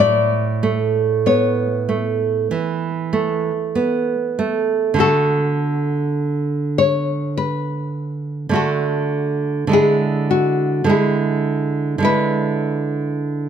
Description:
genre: romantic duo for nylon-string guitar and classical guitar.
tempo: 47-53 BPM.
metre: 4/4.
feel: rubato.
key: D major.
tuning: A4 = 438 Hz.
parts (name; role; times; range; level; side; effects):
nylon-string guitar; melody; 0.0-13.5 s; F#4 to D5; -19 LUFS; left 5 dB; none.
nylon-string guitar; accompaniment; 0.0-13.5 s; A2 to F#4; -18 LUFS; right 4 dB; none.
room: light reverb.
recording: close, detailed microphones.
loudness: -17 LUFS.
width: side -8 dB against mid.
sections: 0.0-5.0 A section; 5.0-13.5 B section.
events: none.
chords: 0.0 A; 5.0 D; 9.7 E7/D.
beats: | 0.00 1.26 2.51 3.76 | 5.00 6.19 7.37 8.55 | 9.72 10.89 12.04 13.19.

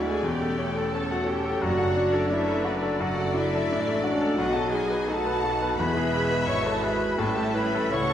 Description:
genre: classical, romantic movement for piano and orchestra.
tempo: 87 BPM.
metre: 4/4.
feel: rubato.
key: unclear.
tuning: A4 = 439 Hz.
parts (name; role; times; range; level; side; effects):
clear grand piano; melody; 0.0-8.1 s; B1 to B4; -28 LUFS; left 2 dB; none.
rich symphonic violin section; melody; 0.0-8.1 s; C#5 to F#5; -35 LUFS; left 3 dB; none.
mellow clarinet; second line; 0.0-8.1 s; D4 to C#5; -29 LUFS; equal; none.
mellow silver concert flute; second line; 0.0-8.1 s; D5 to C#6; -35 LUFS; left 1 dB; none.
rich symphonic violin section; second line; 0.0-8.1 s; D5 to C#6; -34 LUFS; left 1 dB; none.
rich symphonic viola section; accompaniment; 0.0-8.1 s; A3 to B4; -33 LUFS; right 2 dB; none.
mellow French horn section; sustained chords; 0.0-8.1 s; F#3 to E4; -33 LUFS; left 1 dB; none.
rich symphonic cello section; bass; 0.0-8.1 s; D2 to C#3; -35 LUFS; right 3 dB; none.
rich symphonic double bass section; bass; 0.0-8.1 s; E1 to D2; -36 LUFS; right 2 dB; none.
timpani; percussion; 1.6-2.6 s; F#2; -35 LUFS; right 1 dB; none.
room: wet recital hall reverb, RT60 1.5 s.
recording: recorded in a church or concert hall.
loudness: -23 LUFS.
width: side -10 dB against mid.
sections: 0.0-8.1 A section.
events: none.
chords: 0.3 A7/E; 1.6 D/F#; 4.4 B7; 5.8 E; 7.2 A7.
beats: 0.26 0.94 | 1.63 2.32 3.01 3.69 | 4.37 5.07 5.79 6.48 | 7.19 7.91.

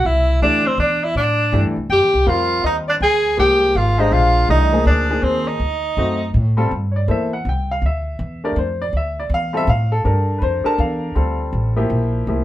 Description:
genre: modal jazz.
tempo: 162 BPM.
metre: 3/4.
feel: swing 64% on 8ths.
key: G dorian from 6.7 s.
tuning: A4 = 441 Hz.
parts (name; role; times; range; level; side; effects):
warm tenor saxophone; melody; 0.0-6.3 s; C4 to Ab4; -17 LUFS; right 1 dB; none.
breathy alto saxophone; second line; 0.0-6.3 s; C5 to Ab5; -23 LUFS; left 2 dB; none.
upright bass; bass; 0.0-12.4 s; Ab1 to A2; -19 LUFS; equal; none.
clear grand piano; accompaniment; 0.4-12.4 s; E3 to A5; -22 LUFS; left 1 dB; none.
room: moderate small room reverb, RT60 0.6 s.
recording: band playing live in one room.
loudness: -15 LUFS.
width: side -14 dB against mid.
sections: 0.0-6.7 A section; 6.7-12.4 B section.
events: none.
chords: 0.0 Am11; 2.3 Fm11; 5.6 D7b9; 6.7 G13sus4.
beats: | 0.05 0.42 0.79 | 1.16 1.53 1.90 | 2.27 2.64 3.01 | 3.38 3.75 4.12 | 4.49 4.86 5.23 | 5.60 5.97 6.34 | 6.71 7.08 7.45 | 7.82 8.20 8.56 | 8.94 9.31 9.68 | 10.05 10.42 10.79 | 11.16 11.53 11.90 | 12.28.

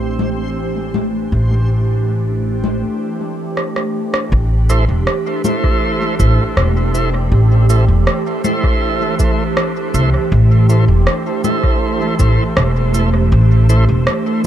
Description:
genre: ambient dub.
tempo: 80 BPM.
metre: 4/4.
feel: straight.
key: A minor.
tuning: A4 = 441 Hz.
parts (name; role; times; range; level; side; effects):
soft additive organ-like pad; sustained chords; 0.0-14.5 s; E3 to C5; -20 LUFS; right 2 dB; ensemble chorus, built-in reverb.
upright bass; bass; 0.0-14.0 s; E1 to C2; -13 LUFS; equal; none.
backwards swelling texture; texture; 0.0-2.8 s; C4 to C5; -32 LUFS; left 1 dB; built-in reverb.
electronic congas, rim click and shaker; drums; 0.2-14.5 s; none; -21 LUFS; left 1 dB; dub echo.
electronic kick drum; drums; 4.3-12.3 s; none; -17 LUFS; equal; overdrive.
tonewheel organ; stabs; 4.7-14.5 s; A3 to C5; -20 LUFS; right 2 dB; slow rotary speaker, dub echo.
room: light reverb, digital ambience.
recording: echo-heavy mix.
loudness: -12 LUFS.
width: side -11 dB against mid.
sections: 0.0-4.3 A section; 4.3-14.5 B section.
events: break 2.8-4.3; drum fill 3.6-4.3.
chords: 0.0 Am.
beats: 0.57 | 1.32 2.07 2.82 3.57 | 4.32 5.07 5.82 6.57 | 7.32 8.07 8.82 9.57 | 10.32 11.07 11.82 12.57 | 13.32 14.07.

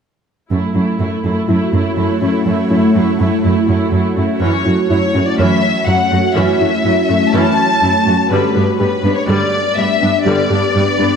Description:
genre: cinematic.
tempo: 123 BPM.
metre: 4/4.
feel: straight.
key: F# phrygian.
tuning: A4 = 440 Hz.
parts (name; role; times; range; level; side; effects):
rich symphonic viola section; accompaniment; 0.5-11.1 s; D3 to F#4; -20 LUFS; right 2 dB; none.
ethereal airy pad; sustained chords; 1.6-11.2 s; A3 to C#5; -18 LUFS; equal; ensemble chorus, built-in reverb, phaser.
harp-like synth pluck; arpeggios; 0.5-11.1 s; F#3 to G4; -21 LUFS; left 1 dB; chorus, phaser, digital delay.
rich symphonic cello section; bass; 0.5-11.1 s; F#2 to G2; -18 LUFS; right 2 dB; none.
warm symphonic violin section; melody; 4.4-11.2 s; B4 to A5; -16 LUFS; left 4 dB; none.
room: wet scoring stage reverb, RT60 1.9 s.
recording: none.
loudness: -12 LUFS.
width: side -6 dB against mid.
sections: 0.5-4.4 A section; 4.4-11.2 B section.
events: none.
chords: 0.5 F#m7; 8.3 G.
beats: | 0.51 1.00 1.48 1.97 | 2.46 2.95 3.44 3.92 | 4.41 4.90 5.39 5.88 | 6.36 6.85 7.34 7.83 | 8.31 8.80 9.29 9.78 | 10.27 10.75.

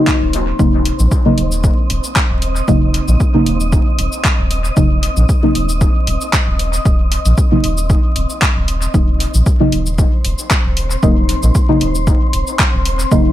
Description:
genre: dub techno.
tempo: 115 BPM.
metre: 4/4.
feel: swing 53% on 16ths.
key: Eb dorian.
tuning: A4 = 441 Hz.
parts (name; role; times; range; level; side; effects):
deep mellow chord stab; stabs; 0.0-13.3 s; Db3 to Eb4; -17 LUFS; equal; chorus, phaser, cassette tape, sidechain pumping, dub echo.
wind-like tuned noise texture; texture; 0.0-13.3 s; C4 to Eb5; -25 LUFS; equal; built-in reverb, sidechain pumping.
deep house drum kit; drums; 0.1-13.2 s; handclaps, hi-hat, shaker; -20 LUFS; left 1 dB; dub echo.
electronic kick drum; drums; 0.1-13.2 s; none; -15 LUFS; equal; none.
round analog bass; bass; 0.2-13.3 s; Eb1 to Bb1; -17 LUFS; equal; sidechain pumping.
room: little or no reverb.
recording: vinyl crackle.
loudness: -12 LUFS.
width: side -13 dB against mid.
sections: 0.0-13.3 A section.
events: none.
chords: 0.0 Ebm7.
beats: 0.07 | 0.59 1.12 1.64 2.16 | 2.68 3.20 3.72 4.25 | 4.77 5.29 5.81 6.33 | 6.86 7.38 7.90 8.42 | 8.94 9.46 9.98 10.51 | 11.03 11.55 12.07 12.59 | 13.12.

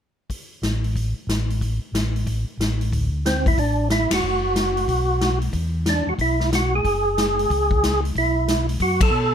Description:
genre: soul jazz organ trio.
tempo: 183 BPM.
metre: 4/4.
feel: swing 64% on 8ths.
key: unclear.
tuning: A4 = 439 Hz.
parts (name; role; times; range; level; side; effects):
swinging big-band drum kit; drums; 0.3-9.1 s; hi-hat, kick drum, ride cymbal, snare drum; -24 LUFS; left 2 dB; none.
mellow tonewheel organ; bass; 0.6-9.3 s; F1 to B2; -23 LUFS; equal; chorus vibrato, slow rotary speaker.
percussive tonewheel organ; melody; 3.3-9.3 s; C4 to A4; -21 LUFS; right 1 dB; overdrive, chorus vibrato, fast rotary speaker.
room: light reverb.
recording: none.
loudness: -19 LUFS.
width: side -8 dB against mid.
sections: 0.3-2.9 A section; 2.9-9.3 B section.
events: band accent 4.1, 9.0.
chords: 0.3 N.C.; 2.9 D5; 4.2 N.C.; 4.9 B5; 5.5 E5; 6.8 F#5; 8.1 B5.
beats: | 0.29 0.62 0.95 1.28 | 1.61 1.93 2.26 2.59 | 2.92 3.24 3.57 3.90 | 4.23 4.55 4.88 5.21 | 5.53 5.86 6.19 6.51 | 6.84 7.17 7.49 7.82 | 8.15 8.47 8.80 9.13.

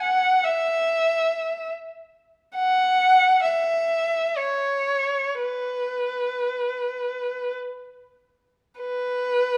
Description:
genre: classical, free, expressive piece for unaccompanied violin.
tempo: 42-72 BPM.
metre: 3/4.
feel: rubato.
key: unclear.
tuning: A4 = 440 Hz.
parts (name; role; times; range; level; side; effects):
rich violin; solo; 0.0-9.6 s; B4 to F#5; -23 LUFS; equal; none.
room: moderate recital hall reverb, RT60 1.6 s.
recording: none.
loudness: -23 LUFS.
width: mono.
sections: 0.0-8.8 A section.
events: none.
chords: none.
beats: | 0.01 0.87 1.71 | 2.55 3.45 4.37 | 5.40 6.52 7.59 | 8.80.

